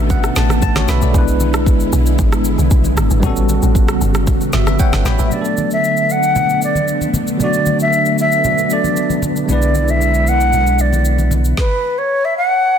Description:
amapiano; 115 BPM; 4/4; straight; B minor; A4 = 441 Hz
bell-like tine electric piano; accompaniment; 0.0-11.6 s; F#3 to B5; -20 LUFS; left 1 dB; medium stereo tremolo
string machine, violas; sustained chords; 0.0-11.6 s; B2 to F#4; -21 LUFS; equal; ensemble chorus, sidechain pumping
deep log drum bass; bass; 0.0-5.3 s; G1 to B1; -16 LUFS; equal
deep house drum kit; drums; 0.1-11.7 s; kick drum, rim click, shaker, snare drum; -19 LUFS; equal
congas; percussion; 0.1-11.4 s; -24 LUFS; right 1 dB
mellow silver concert flute; melody; 5.3-12.8 s; B4 to F#5; -16 LUFS; equal; digital delay
warm sub bass; bass; 9.5-11.5 s; B1; -15 LUFS; equal
light reverb; dense, heavily limited modern master; -12 LUFS; side -8 dB against mid
0.0-5.3 A section; 5.3-12.8 B section
drop 0.0-5.3; tine electric piano fill 0.0-1.1, 4.3-5.3
0.0 Bm9; 1.1 E7/B; 3.2 A13; 5.3 Bm7; 9.5 E7/B; 11.6 N.C.
0.10 0.62 | 1.14 1.67 2.19 2.71 | 3.23 3.75 4.27 4.79 | 5.32 5.84 6.36 6.88 | 7.40 7.92 8.45 8.97 | 9.49 10.01 10.53 11.06 | 11.58 12.10 12.62

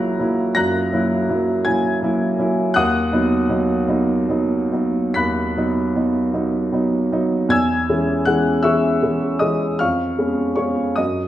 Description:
classical, romantic nocturne for solo piano; 44-56 BPM (dotted quarters); 12/8; rubato; B major; A4 = 440 Hz
warm grand piano; solo; 0.0-11.3 s; C#2 to B6; -17 LUFS; equal
wet recital hall reverb, RT60 1.5 s; -17 LUFS; side -13 dB against mid
0.0-11.3 A section
0.0 F#7/C#; 2.8 B/D#; 7.5 C#m/E; 9.8 C#7/E#
0.56 1.66 | 2.76 3.87 5.17 6.34 | 7.51 8.65 9.81 10.98

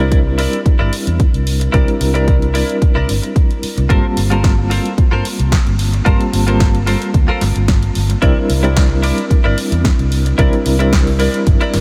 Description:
nu-disco, nu disco; 111 BPM; 4/4; swing 53% on 16ths; A4 = 445 Hz
reed electric piano; accompaniment; 0.0-11.8 s; G3 to A5; -21 LUFS; equal; fast tremolo, low-pass filter, analog delay
direct-recorded clean electric guitar; riff; 0.0-11.7 s; E4 to D5; -26 LUFS; equal; lush chorus, low-pass filter, analog delay
fingered electric bass with an envelope filter; bass; 0.0-11.8 s; G1 to G2; -19 LUFS; equal
electronic kick drum; drums; 0.1-11.6 s; -16 LUFS; equal
house drum kit; drums; 0.1-11.8 s; hi-hat, snare drum; -26 LUFS; equal
light reverb; -14 LUFS; mono
0.0-11.8 A section
0.0 C9; 3.9 Gm11; 8.2 C9
0.12 0.66 1.20 | 1.74 2.28 2.82 3.36 | 3.90 4.44 4.98 5.52 | 6.06 6.61 7.14 7.69 | 8.23 8.77 9.31 9.85 | 10.39 10.93 11.47

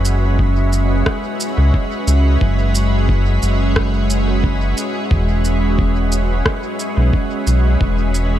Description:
ambient dub; 89 BPM; 4/4; straight; A4 = 440 Hz
soft additive organ-like pad; sustained chords; 0.0-8.4 s; G#3 to E5; -20 LUFS; right 1 dB; ensemble chorus, built-in reverb
round analog bass; bass; 0.0-8.4 s; E1 to C#2; -15 LUFS; equal
electronic shaker and rim click; drums; 0.0-8.3 s; -24 LUFS; equal; overdrive, dub echo
electronic kick drum; drums; 0.4-7.9 s; -19 LUFS; equal; overdrive
light reverb; -14 LUFS; side -12 dB against mid
0.0-8.4 A section
0.0 F#5; 5.1 E
0.39 1.07 1.74 | 2.41 3.09 3.76 4.44 | 5.11 5.79 6.46 7.13 | 7.81

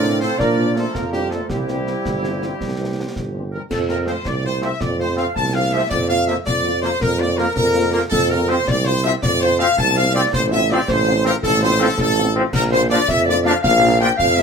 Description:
military-style march for wind band; 109 BPM (dotted quarters); 6/8; straight; F major; A4 = 437 Hz
bright trumpet section; melody; 0.0-14.4 s; G4 to A5; -22 LUFS; left 2 dB
dark woodwind section; second line; 0.0-14.4 s; G4 to A5; -25 LUFS; left 1 dB
hollow large flute ensemble; second line; 0.0-14.4 s; E4 to A5; -24 LUFS; equal
warm euphonium; second line; 0.0-3.5 s; G3 to D4; -26 LUFS; right 4 dB
dark French horn section; accompaniment; 0.0-14.4 s; E3 to F4; -27 LUFS; left 4 dB
clear trombone section; sustained chords; 0.0-14.1 s; E3 to D4; -26 LUFS; left 1 dB
warm tuba; bass; 0.0-14.4 s; G1 to Bb2; -21 LUFS; right 3 dB
concert snare drum, concert bass drum and clash cymbals; drums; 0.0-14.4 s; -27 LUFS; equal
moderate studio reverb, RT60 0.9 s; minimal, uncompressed stereo recording; -16 LUFS; side -6 dB against mid
0.0-3.7 A section; 3.7-14.4 B section
0.4 Bb; 1.5 C; 3.7 F; 5.9 Bb/F; 8.1 F5; 10.3 F/A; 12.5 Bb
| 0.40 0.95 | 1.50 2.05 | 2.60 3.16 | 3.71 4.26 | 4.81 5.37 | 5.92 6.47 | 7.02 7.57 | 8.12 8.68 | 9.23 9.78 | 10.33 10.88 | 11.43 11.98 | 12.53 13.08 | 13.63 14.19

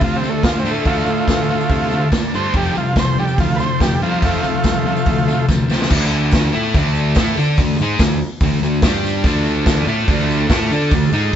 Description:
garage rock duo or trio; 143 BPM; 4/4; straight; D minor; A4 = 441 Hz
overdriven combo organ; melody; 0.0-5.5 s; A3 to C5; -20 LUFS; right 2 dB
combo organ; sustained chords; 0.0-5.9, 9.2-11.4 s; C4 to A4; -29 LUFS; left 1 dB
thick fuzz guitar; riff; 0.0-11.3 s; F2 to D5; -19 LUFS; equal; distortion
fuzz fingered electric bass; bass; 0.0-11.3 s; F1 to D3; -21 LUFS; equal; overdrive, tube saturation
vintage drum kit; drums; 0.0-11.0 s; crash cymbal, hi-hat, kick drum, snare drum; -19 LUFS; equal
tambourine; percussion; 0.1-11.2 s; -38 LUFS; left 4 dB
light reverb; band playing live in one room, nothing above 7.8 kHz; -14 LUFS; side -9 dB against mid
0.0-5.9 A section; 5.9-11.4 B section
transistor combo organ solo 0.0-5.9; drum fill 5.5-5.9
0.0 Dm; 2.5 F; 5.9 D5; 8.8 G5; 9.2 Dm
0.02 0.44 | 0.86 1.28 1.70 2.12 | 2.55 2.97 3.39 3.81 | 4.23 4.65 5.07 5.49 | 5.91 6.33 6.75 7.16 | 7.58 8.00 8.41 8.83 | 9.25 9.67 10.08 10.50 | 10.92 11.33

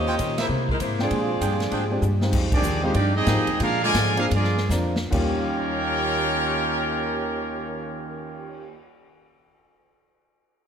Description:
jazz, big band swing; 138-197 BPM; 4/4; swing 62% on 8ths; Eb major; A4 = 440 Hz
warm saxophone section; melody; 0.0-2.2 s; G#3 to Eb5; -28 LUFS; equal
clear upright piano; accompaniment; 0.0-8.7 s; Eb2 to G5; -31 LUFS; left 1 dB
hollow-body jazz guitar; accompaniment; 0.0-8.8 s; Bb2 to C5; -33 LUFS; left 4 dB
upright bass; bass; 0.0-8.7 s; Eb2 to C3; -26 LUFS; equal
clear trumpet section; stabs; 0.1-1.8 s; D4 to G5; -31 LUFS; right 2 dB
swinging big-band drum kit; drums; 0.2-8.5 s; crash cymbal, cymbal swell, hi-hat, kick drum, ride cymbal, snare drum; -29 LUFS; equal
bright trombone section; second line; 1.0-8.7 s; D3 to Ab4; -29 LUFS; right 4 dB
bright trumpet section; melody; 2.5-8.7 s; Ab3 to Ab5; -25 LUFS; equal
moderate scoring stage reverb, RT60 1.9 s; -21 LUFS; side -8 dB against mid
0.0-2.3 A section; 2.3-5.1 B section; 5.1-8.6 C section
band accent 0.3, 2.5; drum fill 2.0-2.3, 4.7-5.1; slowing down 2.3-5.1
0.5 C7b13; 1.1 Bb13; 2.3 Fm9; 3.6 Bb7; 5.1 Eb9
0.19 0.50 0.80 | 1.11 1.41 1.72 2.02 | 2.33 2.64 2.95 3.27 | 3.60 3.94 4.31 4.70 | 5.12 5.55 5.99 6.43 | 6.86 7.30 7.73 8.17

